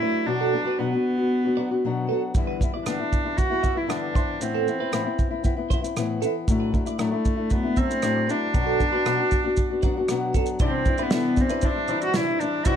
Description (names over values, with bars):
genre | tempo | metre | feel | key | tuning
acoustic pop | 116 BPM | 4/4 | straight | unclear | A4 = 443 Hz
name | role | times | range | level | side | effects
warm cello | melody | 0.0-12.8 s | A3 to F#4 | -25 LUFS | right 1 dB | plate reverb
nylon-string guitar | accompaniment | 0.0-12.8 s | G2 to F#4 | -26 LUFS | left 4 dB | none
twelve-string electric guitar | arpeggios | 0.0-12.8 s | A4 to E5 | -31 LUFS | right 9 dB | phaser
natural country drum kit | drums | 2.3-12.8 s | kick drum, rim click, shaker, snare drum | -25 LUFS | right 1 dB | none
bright upright piano | accompaniment | 10.6-12.8 s | C4 to D5 | -32 LUFS | left 5 dB | none
room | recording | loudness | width
moderate studio reverb, RT60 0.6 s | dark, warm production | -21 LUFS | side -9 dB against mid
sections
0.0-10.6 A section; 10.6-12.8 B section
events
none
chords
0.3 Bm; 2.4 G6; 4.2 Amadd9; 6.5 Dadd9/A; 8.5 Bm; 10.6 Cadd9